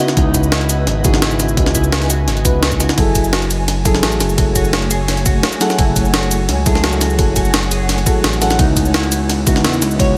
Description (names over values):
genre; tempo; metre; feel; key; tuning
liquid drum and bass; 171 BPM; 4/4; straight; F# dorian; A4 = 440 Hz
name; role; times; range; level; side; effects
mellow FM electric piano; accompaniment; 0.0-10.2 s; C#3 to B4; -22 LUFS; equal; chorus, digital delay
ethereal airy pad; sustained chords; 0.0-10.2 s; A3 to G#5; -28 LUFS; equal; ensemble chorus, built-in reverb, tremolo, sidechain pumping
harp-like synth pluck; arpeggios; 0.0-10.2 s; D#4 to F#5; -25 LUFS; equal; chorus, digital delay
jungle sampler-style drum kit; drums; 0.1-10.1 s; cabasa, hi-hat, ride cymbal, snare drum; -21 LUFS; equal; none
smooth gliding synth bass; bass; 0.2-10.2 s; F#1 to E2; -21 LUFS; equal; none
electronic kick drum; drums; 0.2-10.1 s; none; -19 LUFS; equal; overdrive
room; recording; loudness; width
light reverb; none; -15 LUFS; mono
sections
0.0-10.2 A section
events
none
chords
0.0 C#m11; 3.0 F#m9; 8.6 C#m11